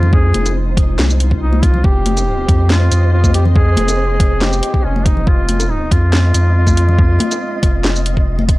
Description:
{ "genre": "deep dubstep", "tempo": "140 BPM", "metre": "4/4", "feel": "half-time", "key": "F minor", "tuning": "A4 = 440 Hz", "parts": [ { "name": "warm duduk", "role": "melody", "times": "0.0-8.3 s", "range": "Db4 to Ab4", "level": "-21 LUFS", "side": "equal", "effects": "dub echo" }, { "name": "dark analog pad", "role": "sustained chords", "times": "0.0-8.6 s", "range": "Ab3 to Eb5", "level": "-29 LUFS", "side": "equal", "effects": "chorus" }, { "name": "saturated sub bass", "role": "bass", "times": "0.0-8.6 s", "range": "F1 to F2", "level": "-14 LUFS", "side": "equal", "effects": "none" }, { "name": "congas and bongos", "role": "percussion", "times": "0.0-8.5 s", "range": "none", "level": "-23 LUFS", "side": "left 3 dB", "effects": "none" }, { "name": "flickering grainy texture", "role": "texture", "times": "0.0-8.6 s", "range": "C4 to Eb5", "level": "-26 LUFS", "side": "equal", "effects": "built-in reverb" }, { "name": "electronic kick drum", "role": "drums", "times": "0.1-8.6 s", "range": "none", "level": "-13 LUFS", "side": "equal", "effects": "overdrive" }, { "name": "garage drum kit", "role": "drums", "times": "0.3-8.6 s", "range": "handclaps, hi-hat, shaker, snare drum", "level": "-20 LUFS", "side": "equal", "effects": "none" } ], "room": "little or no reverb", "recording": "dry, gritty hardware recording, cassette tape", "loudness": "-11 LUFS", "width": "side -19 dB against mid", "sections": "0.0-8.6 A section", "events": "none", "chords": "0.0 Fm" }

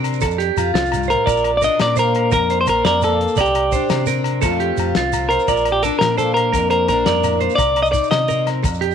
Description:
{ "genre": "highlife guitar band", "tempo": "114 BPM (dotted quarters)", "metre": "12/8", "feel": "straight", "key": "Bb major", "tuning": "A4 = 441 Hz", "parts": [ { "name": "picked plugged-in steel-string acoustic guitar", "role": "accompaniment", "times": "0.0-8.9 s", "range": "F2 to G4", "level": "-25 LUFS", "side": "left 11 dB", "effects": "none" }, { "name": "clean electric guitar", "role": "arpeggios", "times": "0.0-8.9 s", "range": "F4 to D5", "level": "-21 LUFS", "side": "right 10 dB", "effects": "tape echo" }, { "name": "deep dub fingered electric bass", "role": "bass", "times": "0.0-8.9 s", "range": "Bb1 to C3", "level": "-24 LUFS", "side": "equal", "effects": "none" }, { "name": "warm soul drum kit", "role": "drums", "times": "0.0-8.9 s", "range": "hi-hat, kick drum, snare drum", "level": "-24 LUFS", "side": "left 3 dB", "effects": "none" }, { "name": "agogo bells", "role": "percussion", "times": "0.0-8.8 s", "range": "none", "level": "-29 LUFS", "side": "left 14 dB", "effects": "none" }, { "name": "shekere", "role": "percussion", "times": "0.0-8.9 s", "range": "none", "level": "-31 LUFS", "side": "right 9 dB", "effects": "none" }, { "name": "clean electric guitar", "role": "melody", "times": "1.1-8.5 s", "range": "G4 to Eb5", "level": "-18 LUFS", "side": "left 2 dB", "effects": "none" } ], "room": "light reverb, small room ambience", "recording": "1960s-style stereo with parts hard left and right", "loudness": "-15 LUFS", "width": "side -8 dB against mid", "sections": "0.0-8.9 A section", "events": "none", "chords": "0.2 F; 1.3 Bb; 3.4 Cmadd9; 4.4 F; 5.5 Bb; 7.6 Cmadd9" }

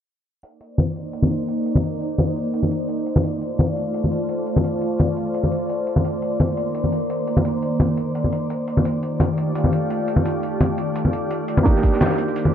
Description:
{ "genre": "liquid drum and bass", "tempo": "171 BPM", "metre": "4/4", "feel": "straight", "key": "C dorian", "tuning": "A4 = 438 Hz", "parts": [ { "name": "glassy FM pad", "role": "sustained chords", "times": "0.9-12.5 s", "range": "Eb3 to D5", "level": "-23 LUFS", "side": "equal", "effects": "ensemble chorus, built-in reverb, sidechain pumping" }, { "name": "breakbeat sampler-style drum kit", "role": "drums", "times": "0.4-12.4 s", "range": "hi-hat, snare drum", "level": "-32 LUFS", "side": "equal", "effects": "none" }, { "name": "congas", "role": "percussion", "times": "0.8-12.5 s", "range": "none", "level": "-20 LUFS", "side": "left 1 dB", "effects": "none" }, { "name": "felt-muted upright piano", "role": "accompaniment", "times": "11.6-12.5 s", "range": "Bb3 to G4", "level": "-21 LUFS", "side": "right 4 dB", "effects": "tape echo" }, { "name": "crunchy breakbeat drum kit", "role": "drums", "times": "11.7-12.4 s", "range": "hi-hat, snare drum", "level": "-37 LUFS", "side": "right 1 dB", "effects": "high-pass filter on hats, high-pass filter on snare, high-pass filter on room" }, { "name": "electronic kick drum", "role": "drums", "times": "11.7-11.9 s", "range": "none", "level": "-17 LUFS", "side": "equal", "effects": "none" } ], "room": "light reverb", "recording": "low-pass filter", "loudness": "-19 LUFS", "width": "side -9 dB against mid", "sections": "0.4-12.5 A section", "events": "filter sweep 0.4-12.5", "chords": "0.4 Cm9; 3.1 Dm7; 6.0 Cm9; 8.9 F13; 11.7 Cm9" }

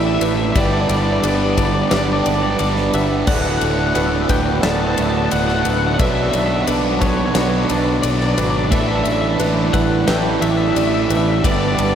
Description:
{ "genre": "post-rock", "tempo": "88 BPM", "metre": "4/4", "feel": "straight", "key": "D major", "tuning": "A4 = 440 Hz", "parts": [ { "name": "twangy electric guitar", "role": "melody", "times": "0.0-11.9 s", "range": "C#5 to A5", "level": "-23 LUFS", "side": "left 4 dB", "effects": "analog chorus, analog delay" }, { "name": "sweeping resonant pad", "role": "sustained chords", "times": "0.0-11.9 s", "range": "F#3 to F#5", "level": "-29 LUFS", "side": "left 5 dB", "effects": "none" }, { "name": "felt-muted upright piano", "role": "arpeggios", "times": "0.0-11.9 s", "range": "D4 to D5", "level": "-26 LUFS", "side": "left 2 dB", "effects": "analog delay" }, { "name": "twangy electric guitar", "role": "arpeggios", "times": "0.0-11.9 s", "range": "D2 to F#4", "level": "-29 LUFS", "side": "left 6 dB", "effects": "ensemble chorus, analog delay" }, { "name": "thick fuzz guitar", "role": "riff", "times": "0.0-11.9 s", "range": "D2 to B4", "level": "-19 LUFS", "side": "right 5 dB", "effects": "distortion" }, { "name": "overdriven fingered electric bass", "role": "bass", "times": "0.0-11.9 s", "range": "D1 to B1", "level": "-22 LUFS", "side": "left 1 dB", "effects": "none" }, { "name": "huge arena drum kit", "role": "drums", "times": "0.2-11.9 s", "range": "crash cymbal, kick drum, ride cymbal, snare drum", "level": "-23 LUFS", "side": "left 1 dB", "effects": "none" } ], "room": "wet huge ambient reverb, RT60 8.4 s", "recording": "dreamy mix soaked in reverb", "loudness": "-15 LUFS", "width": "side -8 dB against mid", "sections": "0.0-11.9 A section", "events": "none", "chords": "0.0 A7sus4; 0.6 G; 3.3 D6; 6.0 Bm9; 8.7 A7sus4; 11.4 Gmaj7" }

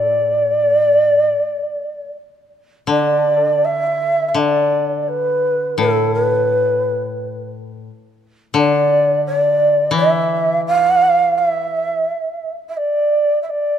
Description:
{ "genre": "japanese traditional, Japanese chamber music", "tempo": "85 BPM", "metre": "4/4", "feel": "uneven beats, rubato", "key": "D kumoi", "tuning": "A4 = 441 Hz", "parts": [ { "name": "long shakuhachi", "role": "melody", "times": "0.0-13.8 s", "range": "A4 to F5", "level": "-15 LUFS", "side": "right 1 dB", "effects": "none" }, { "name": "koto", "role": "accompaniment", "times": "0.0-12.0 s", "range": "A2 to E3", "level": "-22 LUFS", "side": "left 4 dB", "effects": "none" } ], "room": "light reverb", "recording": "close, detailed microphones", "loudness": "-14 LUFS", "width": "side -9 dB against mid", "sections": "0.0-2.9 A section; 2.9-13.8 B section", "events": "none", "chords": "none" }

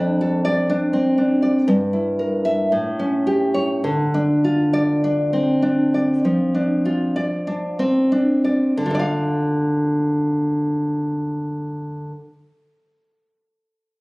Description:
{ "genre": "romantic piece for solo classical guitar", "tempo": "45-63 BPM", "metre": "4/4", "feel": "rubato", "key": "D minor", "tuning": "A4 = 443 Hz", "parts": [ { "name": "nylon-string guitar", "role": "solo", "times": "0.0-12.3 s", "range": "F2 to F5", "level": "-17 LUFS", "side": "equal", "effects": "none" } ], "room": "light reverb", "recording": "recorded on a phone in the room, club reverb", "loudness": "-17 LUFS", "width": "side -24 dB against mid", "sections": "0.0-8.8 A section; 8.8-13.7 B section", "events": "slowing down 0.0-8.8", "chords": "0.0 Dm/F; 1.7 Edim/G; 2.7 A7; 3.8 Dm" }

